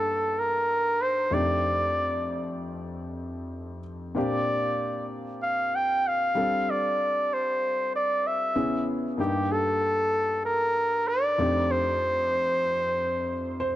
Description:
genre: soul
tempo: 95 BPM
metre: 4/4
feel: swing 54% on 16ths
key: unclear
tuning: A4 = 439 Hz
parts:
  - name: warm flugelhorn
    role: melody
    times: 0.0-13.8 s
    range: G4 to G5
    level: -25 LUFS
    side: equal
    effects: none
  - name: dark grand piano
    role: accompaniment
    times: 0.0-13.8 s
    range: F2 to C5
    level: -30 LUFS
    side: left 1 dB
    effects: none
room: moderate plate reverb, RT60 3.3 s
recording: none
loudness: -24 LUFS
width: side -14 dB against mid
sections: 0.0-13.8 A section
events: none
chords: 0.0 Cm13/G; 1.3 F13; 4.2 Bb69; 6.4 G9sus4; 8.6 Dbm7; 9.2 Ebmaj7#11/G; 11.4 F13

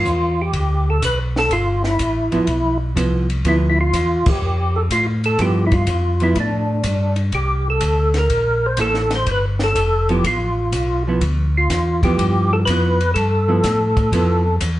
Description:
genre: soul jazz organ trio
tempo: 124 BPM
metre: 4/4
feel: swing 68% on 8ths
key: G mixolydian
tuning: A4 = 440 Hz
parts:
  - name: percussive tonewheel organ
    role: melody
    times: 0.0-14.6 s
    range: D4 to C5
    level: -20 LUFS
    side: equal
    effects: slow rotary speaker, chorus vibrato
  - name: mellow tonewheel organ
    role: bass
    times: 0.0-14.8 s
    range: F1 to A2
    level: -19 LUFS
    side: equal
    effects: chorus vibrato, slow rotary speaker
  - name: compact cocktail drum kit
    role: drums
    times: 0.0-14.8 s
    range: crash cymbal, hi-hat, kick drum, ride cymbal, snare drum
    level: -25 LUFS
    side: equal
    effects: none
  - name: hollow-body jazz guitar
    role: accompaniment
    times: 2.3-14.4 s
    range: F3 to A4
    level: -22 LUFS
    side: right 2 dB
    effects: none
room: wet club reverb, RT60 0.8 s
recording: heard from further back in the room, nothing above 10.4 kHz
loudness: -16 LUFS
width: side -15 dB against mid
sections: 0.0-14.8 A section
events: band accent 4.2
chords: 0.0 G13; 7.3 C13; 9.3 G13

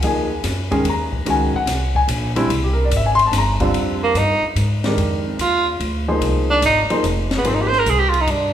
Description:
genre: modal jazz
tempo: 145 BPM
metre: 3/4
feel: swing 67% on 8ths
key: F dorian from 3.7 s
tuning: A4 = 440 Hz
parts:
  - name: warm concert grand piano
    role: accompaniment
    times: 0.0-7.7 s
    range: D3 to C6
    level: -20 LUFS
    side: left 1 dB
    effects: none
  - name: upright bass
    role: bass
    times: 0.0-8.5 s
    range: F1 to Ab2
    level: -21 LUFS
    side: equal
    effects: none
  - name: open jazz drum kit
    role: drums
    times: 0.0-8.4 s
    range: hi-hat, kick drum, ride cymbal, snare drum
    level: -26 LUFS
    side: left 3 dB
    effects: none
  - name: clear tenor saxophone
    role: melody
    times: 4.0-8.5 s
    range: Bb3 to C5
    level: -18 LUFS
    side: right 2 dB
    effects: none
room: wet recital hall reverb, RT60 1.6 s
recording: recorded in a church or concert hall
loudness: -16 LUFS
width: side -10 dB against mid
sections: 0.0-3.7 A section; 3.7-8.5 A section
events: tenor saxophone solo 3.7-8.5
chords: 0.0 Ab9sus4; 2.5 C5; 3.7 Fm11

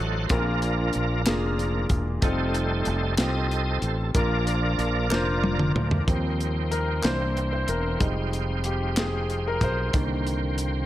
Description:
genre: slow gospel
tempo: 62 BPM (dotted quarters)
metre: 6/8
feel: straight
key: unclear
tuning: A4 = 440 Hz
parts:
  - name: clear baby grand piano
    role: accompaniment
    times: 0.0-10.9 s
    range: Bb2 to C5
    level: -29 LUFS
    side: left 1 dB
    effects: none
  - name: bright tonewheel organ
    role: sustained chords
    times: 0.0-10.9 s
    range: C3 to G5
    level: -30 LUFS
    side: right 2 dB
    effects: slow rotary speaker, overdrive, chorus vibrato
  - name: fingered electric bass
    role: bass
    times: 0.0-10.9 s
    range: Fb1 to Eb2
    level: -27 LUFS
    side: equal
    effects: none
  - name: tight funk drum kit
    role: drums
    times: 0.3-10.7 s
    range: hi-hat, kick drum, snare drum, toms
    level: -26 LUFS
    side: equal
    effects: none
  - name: group handclap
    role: percussion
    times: 1.3-9.3 s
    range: none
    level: -35 LUFS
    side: left 2 dB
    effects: none
room: light reverb, studio reverb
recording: none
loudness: -23 LUFS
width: side -13 dB against mid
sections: 0.0-6.1 A section; 6.1-10.9 B section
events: tonewheel organ solo 0.0-6.1; drum fill 5.1-6.1; grand piano solo 6.1-10.9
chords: 0.3 Bb; 2.2 F7; 4.1 Bb; 6.1 Eb6; 7.0 C7; 8.0 Fm9; 9.9 Cm7

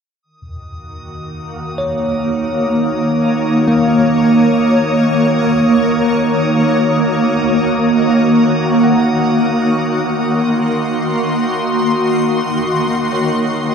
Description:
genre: ambient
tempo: free time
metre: none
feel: none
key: Eb dorian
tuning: A4 = 440 Hz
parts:
  - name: shimmering ambient pad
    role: sustained chords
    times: 1.6-13.7 s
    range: Eb3 to C6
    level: -14 LUFS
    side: equal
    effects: chorus, built-in reverb
  - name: drifting glass-harmonics texture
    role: texture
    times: 0.6-13.7 s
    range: Eb6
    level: -27 LUFS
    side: equal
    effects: chorus, built-in reverb
  - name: analog drone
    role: drone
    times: 1.1-13.7 s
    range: Eb3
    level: -24 LUFS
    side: equal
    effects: chorus, phaser
  - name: bell-like tine electric piano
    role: arpeggios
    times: 1.8-13.7 s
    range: Bb3 to Gb5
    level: -21 LUFS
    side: left 1 dB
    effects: fast stereo tremolo, ping-pong delay
room: wet huge ambient reverb, RT60 8.6 s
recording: dark, warm production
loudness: -12 LUFS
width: side -6 dB against mid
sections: 0.2-13.7 A section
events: fade-out on tine electric piano 0.2-13.7; fade-out on synth drone 0.2-13.7; fade-out on synth texture 0.2-13.7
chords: 0.2 Ebm7

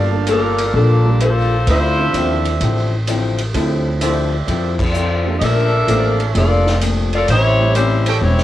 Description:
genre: jazz, big band swing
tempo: 128 BPM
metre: 4/4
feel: swing 67% on 8ths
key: D minor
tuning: A4 = 439 Hz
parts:
  - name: warm saxophone section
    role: melody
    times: 0.0-8.4 s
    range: F3 to E5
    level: -18 LUFS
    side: left 1 dB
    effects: cassette tape
  - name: picked old ladder-braced acoustic guitar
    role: accompaniment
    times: 0.0-8.4 s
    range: A2 to A4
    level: -22 LUFS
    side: left 7 dB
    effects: cassette tape
  - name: clear trumpet section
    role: stabs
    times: 0.0-8.2 s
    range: F4 to A5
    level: -24 LUFS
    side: right 6 dB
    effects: cassette tape
  - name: upright bass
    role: bass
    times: 0.0-8.4 s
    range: E1 to F2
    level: -17 LUFS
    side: equal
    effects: none
  - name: warm grand piano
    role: accompaniment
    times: 0.1-7.7 s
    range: F3 to E5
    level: -24 LUFS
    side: right 6 dB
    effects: cassette tape
  - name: swinging big-band drum kit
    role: drums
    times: 0.3-8.4 s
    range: crash cymbal, hi-hat, kick drum, ride cymbal, snare drum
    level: -24 LUFS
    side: right 1 dB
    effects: cassette tape
room: moderate booth ambience, RT60 0.3 s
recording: home recording on cassette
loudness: -14 LUFS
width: side -13 dB against mid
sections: 0.0-8.4 A section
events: band accent 4.7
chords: 0.0 Gm9; 1.7 Dm9; 5.4 Bbmaj7; 7.3 A7#9

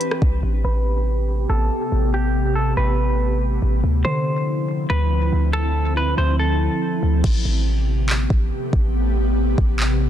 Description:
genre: hip hop, atmospheric cloud-rap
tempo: 141 BPM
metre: 4/4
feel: half-time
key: A minor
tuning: A4 = 440 Hz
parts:
  - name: semi-hollow electric guitar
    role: melody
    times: 0.0-7.2 s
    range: G4 to C5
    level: -26 LUFS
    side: equal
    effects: low-pass filter, tape echo
  - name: ethereal airy pad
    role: sustained chords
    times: 0.0-10.1 s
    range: C3 to G4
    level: -24 LUFS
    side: equal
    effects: ensemble chorus, built-in reverb, sidechain pumping, low-pass filter
  - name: smooth R&B drum kit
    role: drums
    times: 0.0-0.3, 7.2-9.9 s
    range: crash cymbal, handclaps, hi-hat, kick drum, rim click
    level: -21 LUFS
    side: equal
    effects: none
  - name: warm 808-style bass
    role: bass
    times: 0.2-10.1 s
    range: A1 to D3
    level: -20 LUFS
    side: equal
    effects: none
room: little or no reverb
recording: dense, heavily limited modern master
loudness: -18 LUFS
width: side -10 dB against mid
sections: 0.4-7.2 A section; 7.2-10.1 B section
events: filter sweep 0.4-7.2; hi-hats muted 7.2-10.1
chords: 0.4 Am9; 3.8 Dm9; 7.2 Am9

